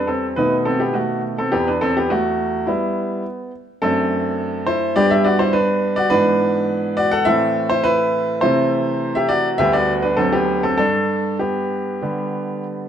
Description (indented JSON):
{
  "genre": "classical-period piano sonatina",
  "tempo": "104 BPM",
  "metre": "4/4",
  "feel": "rubato",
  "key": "G major",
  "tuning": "A4 = 444 Hz",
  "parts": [
    { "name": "clear baby grand piano", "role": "solo", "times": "0.0-12.9 s", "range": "D2 to F#5", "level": "-16 LUFS", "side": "equal", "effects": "none" }
  ],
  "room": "moderate recital hall reverb, RT60 1.5 s",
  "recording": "close, detailed microphones",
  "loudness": "-16 LUFS",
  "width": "side -9 dB against mid",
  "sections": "0.0-12.9 A section",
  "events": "none",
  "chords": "0.4 B7; 1.5 Em; 3.8 D7/F#; 5.0 G; 6.1 E7/G#; 7.3 Am; 8.4 Am/C; 9.6 G/D; 10.2 D7; 10.8 G"
}